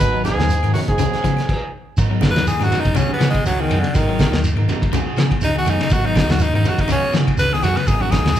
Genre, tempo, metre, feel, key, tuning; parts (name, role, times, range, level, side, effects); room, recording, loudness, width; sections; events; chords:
afrobeat; 122 BPM; 4/4; swing 54% on 16ths; G# dorian; A4 = 440 Hz
clear trumpet; melody; 0.0-1.7 s; F#4 to B4; -23 LUFS; right 1 dB
clear trombone; second line; 0.0-1.7 s; F#2 to B2; -27 LUFS; right 2 dB
electric guitar at the edge of break-up; stabs; 0.0-8.3 s; F#3 to A#4; -28 LUFS; right 4 dB
hollow-body short-scale fingered electric bass; bass; 0.0-8.4 s; F#1 to C#3; -21 LUFS; equal
cloth-damped thuddy drum kit; drums; 0.0-8.4 s; crash cymbal, hi-hat, kick drum, ride cymbal, snare drum; -21 LUFS; equal
shekere; percussion; 0.0-8.4 s; -27 LUFS; right 2 dB
electric guitar at the edge of break-up; arpeggios; 0.1-8.4 s; C#3 to F#3; -26 LUFS; left 8 dB; tremolo
congas; percussion; 0.2-8.4 s; -28 LUFS; right 3 dB
claves; percussion; 0.3-8.3 s; -40 LUFS; left 5 dB
raspy tenor saxophone; melody; 2.3-8.4 s; D3 to B4; -21 LUFS; equal
moderate large studio reverb, RT60 1.2 s; band playing live in one room; -15 LUFS; side -11 dB against mid
0.0-2.0 A section; 2.0-8.4 B section
stop 1.5-2.0; tenor saxophone solo 2.0-8.4
0.0 G#m9; 1.0 C#7sus4; 2.0 G#m9; 3.0 C#7sus4; 3.9 G#m9; 4.9 C#7sus4; 5.9 G#m9; 6.9 C#7sus4; 7.9 G#m9